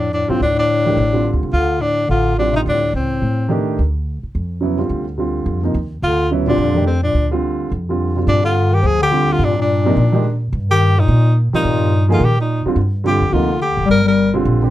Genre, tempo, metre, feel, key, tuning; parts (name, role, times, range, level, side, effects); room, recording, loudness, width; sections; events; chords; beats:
modal jazz; 214 BPM; 4/4; swing 60% on 8ths; G minor from 8.3 s; A4 = 441 Hz
breathy tenor saxophone; melody; 0.0-3.6, 6.0-14.3 s; C4 to Bb4; -18 LUFS; equal
mellow bass clarinet; second line; 0.0-3.6, 6.0-14.3 s; F2 to G3; -20 LUFS; left 5 dB
upright bass; bass; 0.0-14.7 s; F#1 to Bb2; -18 LUFS; equal
warm grand piano; accompaniment; 0.3-14.7 s; C3 to Ab4; -19 LUFS; right 2 dB
light reverb; dark, warm production; -14 LUFS; side -14 dB against mid
0.0-8.3 A section; 8.3-14.7 B section
0.0 Dm7; 3.8 Bb/D (rootless); 8.3 Gm7; 10.5 Eb/G; 12.8 Gm7
0.13 | 0.41 0.69 0.97 1.25 | 1.53 1.81 2.09 2.37 | 2.65 2.94 3.22 3.50 | 3.78 4.06 4.34 4.62 | 4.90 5.18 5.46 5.75 | 6.03 6.31 6.59 6.87 | 7.15 7.43 7.71 7.99 | 8.28 8.56 8.84 9.12 | 9.40 9.68 9.96 10.24 | 10.52 10.80 11.08 11.37 | 11.65 11.93 12.21 12.49 | 12.77 13.05 13.33 13.61 | 13.89 14.17 14.46